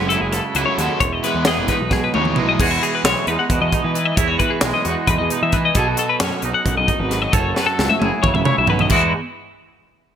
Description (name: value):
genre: math rock and midwest emo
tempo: 266 BPM (eighths)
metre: 7/8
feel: straight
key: E major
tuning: A4 = 439 Hz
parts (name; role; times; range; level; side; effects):
- twangy electric guitar; accompaniment; 0.0-9.1 s; E2 to B4; -23 LUFS; right 7 dB; wide subtle chorus
- twelve-string electric guitar; arpeggios; 0.0-9.1 s; E4 to F#5; -20 LUFS; left 6 dB; harmonic tremolo
- overdriven electric guitar; riff; 0.0-2.6 s; E3 to F#4; -25 LUFS; right 2 dB; lush chorus
- fuzz picked electric bass; bass; 0.0-9.1 s; E1 to E3; -24 LUFS; equal; overdrive
- crisp fusion drum kit; drums; 0.1-9.0 s; crash cymbal, hi-hat, kick drum, snare drum, toms; -20 LUFS; equal; gated reverb
room: light reverb, small room ambience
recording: bright 1980s-style digital production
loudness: -15 LUFS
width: side -9 dB against mid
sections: 0.0-2.6 A section; 2.6-8.9 B section; 8.9-10.2 C section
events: drum fill 1.9-2.6, 7.6-8.9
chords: 0.0 F#m9; 1.0 Emaj7; 2.6 Emaj9; 5.8 B9; 7.3 F#m9; 8.9 Emaj9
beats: 0.10 0.33 0.56 0.78 | 1.01 1.24 1.46 1.69 1.92 2.15 2.37 | 2.60 2.83 3.05 3.28 3.50 3.73 3.96 | 4.18 4.41 4.63 4.86 5.09 5.31 5.54 | 5.76 5.99 6.21 6.44 6.66 6.89 7.11 | 7.34 7.57 7.79 8.02 8.24 8.46 8.69 | 8.91